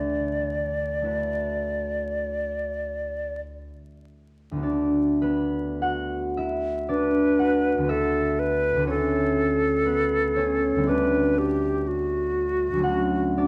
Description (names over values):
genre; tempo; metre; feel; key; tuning
classical, impressionist duo for flute and harp; 48-62 BPM; 4/4; rubato; D major; A4 = 437 Hz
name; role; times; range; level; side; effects
hollow concert flute; melody; 0.0-13.5 s; F#4 to D5; -27 LUFS; equal; none
concert harp; accompaniment; 0.0-13.5 s; D2 to F#5; -27 LUFS; equal; none
room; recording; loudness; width
moderate recital hall reverb, RT60 1.6 s; close, detailed microphones, vinyl crackle; -25 LUFS; mono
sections
0.0-4.6 A section; 4.6-13.5 A section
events
none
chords
0.0 D69; 8.9 F#m7/D; 12.9 Dmaj7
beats
1.03 2.24 3.44 | 4.64 5.83 6.89 7.89 | 8.88 9.87 10.89 11.88 | 12.86